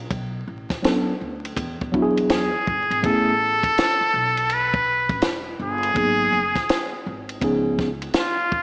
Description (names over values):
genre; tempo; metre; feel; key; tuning
hip hop, jazz-hop; 82 BPM; 4/4; swing 64% on 16ths; unclear; A4 = 440 Hz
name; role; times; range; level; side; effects
upright bass; bass; 0.0-8.1 s; E1 to E3; -32 LUFS; equal; none
compact cocktail drum kit; drums; 0.1-8.6 s; hi-hat, kick drum, ride cymbal, snare drum; -25 LUFS; equal; none
mellow tine electric piano; accompaniment; 0.8-7.9 s; F3 to A4; -22 LUFS; equal; overdrive, medium stereo tremolo
trumpet with straight mute; melody; 2.3-8.6 s; F4 to B4; -20 LUFS; equal; none
room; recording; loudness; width
wet lush hall reverb, RT60 2.1 s; dreamy mix soaked in reverb, vinyl crackle, small speaker sound; -19 LUFS; side -29 dB against mid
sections
0.0-8.6 A section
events
none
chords
0.1 Cbm7; 1.6 E7; 3.0 Asus2; 6.0 Abm7; 7.4 Db7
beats
| 0.11 0.84 1.57 2.30 | 3.03 3.77 4.50 5.23 | 5.96 6.69 7.42 8.16